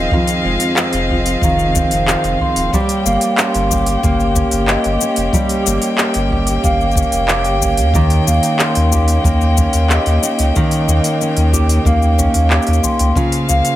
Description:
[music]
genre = folktronica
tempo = 92 BPM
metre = 4/4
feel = straight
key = unclear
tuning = A4 = 440 Hz
[part]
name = vibraphone with soft mallets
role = second line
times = 0.0-13.8 s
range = Eb5 to C6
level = -20 LUFS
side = equal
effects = tape echo
[part]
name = warm string quartet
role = sustained chords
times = 0.0-13.8 s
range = Bb3 to G5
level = -22 LUFS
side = left 1 dB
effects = none
[part]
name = fingerpicked steel-string acoustic guitar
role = arpeggios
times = 0.0-13.8 s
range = F2 to G4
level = -18 LUFS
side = equal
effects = tape echo
[part]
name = warm sub bass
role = bass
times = 0.0-13.6 s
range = Eb1 to Eb2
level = -16 LUFS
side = equal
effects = none
[part]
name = kick drum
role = drums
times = 0.1-13.3 s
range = none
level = -20 LUFS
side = equal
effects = none
[part]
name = organic electronic drum kit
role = drums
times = 0.3-13.8 s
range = handclaps, hi-hat, shaker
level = -20 LUFS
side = left 1 dB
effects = overdrive
[sound]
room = light reverb, studio ambience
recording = none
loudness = -12 LUFS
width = side -13 dB against mid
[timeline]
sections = 0.0-13.8 A section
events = none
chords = 0.0 Fm7; 2.7 Gdim; 7.9 Eb7; 13.2 Bbmadd9/Db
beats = | 0.12 0.77 1.42 2.08 | 2.73 3.38 4.03 4.68 | 5.34 5.99 6.64 7.29 | 7.95 8.60 9.25 9.90 | 10.55 11.21 11.86 12.51 | 13.16

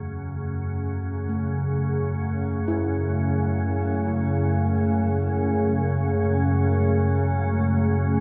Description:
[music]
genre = dark ambient drone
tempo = free time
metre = none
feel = none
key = F# minor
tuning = A4 = 440 Hz
[part]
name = deep dark ambient pad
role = sustained chords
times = 0.0-8.2 s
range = A3 to F#5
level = -30 LUFS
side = equal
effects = chorus, built-in reverb
[part]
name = gamelan-type bossed gongs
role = arpeggios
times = 0.0-8.2 s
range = E2 to E4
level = -37 LUFS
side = equal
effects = tape echo
[part]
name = organ-like drone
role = drone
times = 0.0-8.2 s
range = F#2 to C#3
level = -25 LUFS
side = equal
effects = ensemble chorus, built-in reverb
[sound]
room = moderate huge ambient reverb, RT60 8.4 s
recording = cassette tape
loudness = -24 LUFS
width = mono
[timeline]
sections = 0.0-8.2 A section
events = fade-in on synth drone 0.0-8.2; fade-in on ambient pad 0.0-8.2; fade-in on kettle gongs 0.0-8.2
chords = 0.0 F#madd9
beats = free time

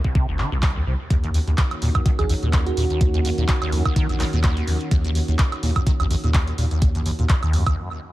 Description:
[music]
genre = acid house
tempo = 126 BPM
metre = 4/4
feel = swing 55% on 16ths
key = unclear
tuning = A4 = 440 Hz
[part]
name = liquid acid bass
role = riff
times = 0.0-7.8 s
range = Eb1 to Eb3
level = -25 LUFS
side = equal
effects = phaser, tube saturation, ensemble chorus, vintage 12-bit sampler grit, sidechain pumping, tape echo
[part]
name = electronic kick drum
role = drums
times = 0.0-7.8 s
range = none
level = -19 LUFS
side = equal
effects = overdrive
[part]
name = saturated sub bass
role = bass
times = 0.3-7.6 s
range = G1 to Eb2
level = -22 LUFS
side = equal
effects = sidechain pumping
[part]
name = punchy analog drum machine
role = drums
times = 0.4-7.8 s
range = handclaps, hi-hat, woodblock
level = -29 LUFS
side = right 2 dB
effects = tape echo
[part]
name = lush unison pad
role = sustained chords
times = 1.1-7.7 s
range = Eb3 to Gb4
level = -31 LUFS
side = right 1 dB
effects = chorus, sidechain pumping
[part]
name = bell-like FM electric piano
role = melody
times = 2.2-3.1 s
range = Gb4 to Ab4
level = -29 LUFS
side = right 5 dB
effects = chorus, tremolo, tape echo
[sound]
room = little or no reverb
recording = echo-heavy mix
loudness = -18 LUFS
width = side -16 dB against mid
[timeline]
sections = 0.0-8.1 A section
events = break 7.8-8.1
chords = 0.0 Cm; 1.1 Ebm7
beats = 0.15 0.63 | 1.10 1.58 2.06 2.53 | 3.01 3.49 3.96 4.44 | 4.92 5.39 5.87 6.34 | 6.82 7.30

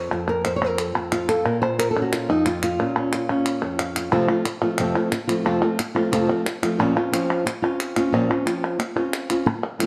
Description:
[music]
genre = flamenco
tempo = 180 BPM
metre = 4/4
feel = straight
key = Bb harmonic minor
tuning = A4 = 440 Hz
[part]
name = flamenco guitar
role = melody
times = 0.0-9.9 s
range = F2 to F5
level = -24 LUFS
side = equal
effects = slapback echo
[part]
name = palmas hand claps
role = percussion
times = 0.1-9.9 s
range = none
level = -29 LUFS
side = equal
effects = none
[sound]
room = moderate stone room reverb, RT60 1.3 s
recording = dark, warm production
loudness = -22 LUFS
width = mono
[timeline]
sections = 0.0-4.1 A section; 4.1-9.9 B section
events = nylon-string guitar solo 0.0-4.1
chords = 0.0 F5; 1.5 Bbm; 4.1 F; 6.8 Bbmadd9 (rootless)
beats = | 0.12 0.45 0.79 1.12 | 1.46 1.79 2.12 2.46 | 2.79 3.12 3.46 3.79 | 4.13 4.46 4.79 5.13 | 5.46 5.80 6.13 6.46 | 6.80 7.13 7.46 7.80 | 8.13 8.47 8.80 9.13 | 9.47 9.80

